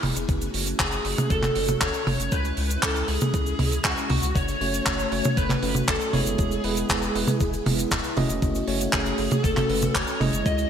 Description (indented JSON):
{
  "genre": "italo disco",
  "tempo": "118 BPM",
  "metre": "4/4",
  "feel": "straight",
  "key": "F# dorian",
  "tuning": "A4 = 440 Hz",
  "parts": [
    { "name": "string machine, full ensemble", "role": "sustained chords", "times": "0.0-10.7 s", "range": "G#3 to G#4", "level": "-32 LUFS", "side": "left 1 dB", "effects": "phaser, ensemble chorus" },
    { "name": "round analog bass", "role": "bass", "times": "0.0-10.7 s", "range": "E1 to C#2", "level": "-30 LUFS", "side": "equal", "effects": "none" },
    { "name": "damped 70s drum kit", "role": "drums", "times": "0.0-10.7 s", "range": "cabasa, handclaps, hi-hat, toms", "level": "-25 LUFS", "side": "right 1 dB", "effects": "gated reverb" },
    { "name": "electronic kick drum", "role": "drums", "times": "0.3-10.6 s", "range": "none", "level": "-28 LUFS", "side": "equal", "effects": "none" },
    { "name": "lead guitar through a small cranked amp", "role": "melody", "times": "0.8-10.7 s", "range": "F#4 to D#5", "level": "-29 LUFS", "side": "equal", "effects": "overdrive, wide subtle chorus, ping-pong delay" },
    { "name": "bell-like tine electric piano", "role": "stabs", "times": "4.6-10.7 s", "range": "G#3 to D#5", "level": "-29 LUFS", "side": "right 2 dB", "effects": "fast stereo tremolo" }
  ],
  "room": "moderate lush hall reverb, RT60 2.2 s",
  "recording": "bright 1980s-style digital production",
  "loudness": "-21 LUFS",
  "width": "side -8 dB against mid",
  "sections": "0.0-10.7 A section",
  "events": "none",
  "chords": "0.3 F#m; 2.3 C#m; 4.4 F#m; 6.4 E; 8.4 F#m"
}